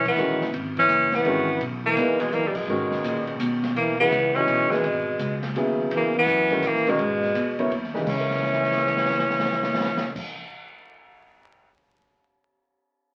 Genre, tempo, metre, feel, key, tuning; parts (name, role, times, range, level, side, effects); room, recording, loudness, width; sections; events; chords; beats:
modal jazz; 167 BPM; 3/4; swing 65% on 8ths; A4 = 436 Hz
bright tenor saxophone; melody; 0.0-10.2 s; G3 to C#4; -25 LUFS; equal
breathy trombone; second line; 0.0-10.2 s; A#2 to E3; -32 LUFS; equal
upright bass; bass; 0.0-10.2 s; F#1 to B2; -34 LUFS; equal
open jazz drum kit; drums; 0.1-11.7 s; crash cymbal, hi-hat, kick drum, ride cymbal, snare drum; -36 LUFS; equal
warm concert grand piano; accompaniment; 0.2-10.5 s; A#2 to E7; -30 LUFS; equal
wet studio reverb, RT60 0.7 s; very old 78 rpm record, vinyl crackle; -23 LUFS; mono
0.0-3.8 A section; 3.8-8.1 B section; 8.1-10.2 C section
band accent 0.0, 2.5; drum fill 8.2-10.1
0.0 Eadd9; 8.1 C#m6
0.19 | 0.55 0.90 1.26 | 1.61 1.97 2.33 | 2.69 3.04 3.40 | 3.76 4.12 4.48 | 4.83 5.19 5.55 | 5.91 6.27 6.63 | 6.99 7.35 7.71 | 8.06 8.42 8.78 | 9.14 9.50 9.86